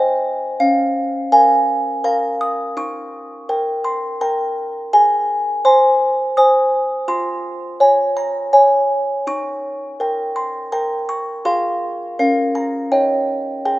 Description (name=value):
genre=classical, lullaby for music box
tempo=83 BPM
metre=3/4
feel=straight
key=unclear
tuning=A4 = 440 Hz
part: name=music box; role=solo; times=0.0-13.8 s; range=Db4 to Eb6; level=-15 LUFS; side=equal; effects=none
room=moderate lush hall reverb, RT60 2.4 s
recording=rough home demo mix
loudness=-15 LUFS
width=side -17 dB against mid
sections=0.0-13.8 A section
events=none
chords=0.0 Ab (rootless); 0.6 Bbm/Db; 2.8 Eb7; 4.9 Ab; 7.1 Db/F; 9.3 Eb; 11.5 Fm; 12.2 Bbm/Db; 12.9 Eb7